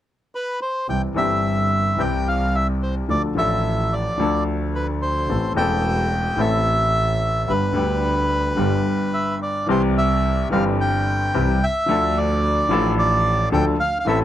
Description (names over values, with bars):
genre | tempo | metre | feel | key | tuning
tango | 109 BPM | 4/4 | rubato | C major | A4 = 440 Hz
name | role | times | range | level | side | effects
bandoneon | melody | 0.3-14.2 s | B4 to G5 | -22 LUFS | equal | none
clear grand piano | accompaniment | 0.9-14.2 s | E1 to A4 | -22 LUFS | left 2 dB | none
rich double bass | bass | 0.9-14.2 s | E1 to D2 | -23 LUFS | right 1 dB | none
room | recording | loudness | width
light reverb | close, detailed microphones | -18 LUFS | side -12 dB against mid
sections
0.9-9.7 A section; 9.7-14.2 B section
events
break 9.1-9.7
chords
0.0 N.C.; 0.9 C; 3.1 Dm; 5.3 Am; 7.5 G; 9.7 C; 11.9 Dm